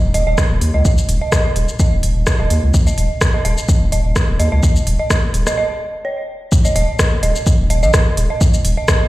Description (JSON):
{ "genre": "minimal techno", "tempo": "127 BPM", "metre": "4/4", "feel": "swing 54% on 16ths", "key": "unclear", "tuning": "A4 = 439 Hz", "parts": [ { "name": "saturated sub bass", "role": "bass", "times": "0.0-8.7 s", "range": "Eb1 to Eb2", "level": "-16 LUFS", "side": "equal", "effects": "sidechain pumping" }, { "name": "dark detuned synth bell", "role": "riff", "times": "0.1-8.9 s", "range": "Db5 to Eb5", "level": "-22 LUFS", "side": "right 3 dB", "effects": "chorus, sidechain pumping, digital delay" }, { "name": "garage drum kit", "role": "drums", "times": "0.1-9.0 s", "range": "hi-hat, rim click, shaker", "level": "-21 LUFS", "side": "equal", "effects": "none" }, { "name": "electronic kick drum", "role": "drums", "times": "0.4-9.0 s", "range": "none", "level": "-14 LUFS", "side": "equal", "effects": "none" } ], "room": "light reverb", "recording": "played on a big sound system in a bare room, large studio reverb", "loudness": "-13 LUFS", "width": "side -17 dB against mid", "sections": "0.0-6.5 A section; 6.5-9.1 B section", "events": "break 5.6-6.5; drop 6.5-9.1", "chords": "0.0 Eb5", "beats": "0.38 | 0.85 1.32 1.80 2.27 | 2.74 3.21 3.69 4.16 | 4.63 5.10 5.58 6.05 | 6.52 6.99 7.46 7.94 | 8.41 8.88" }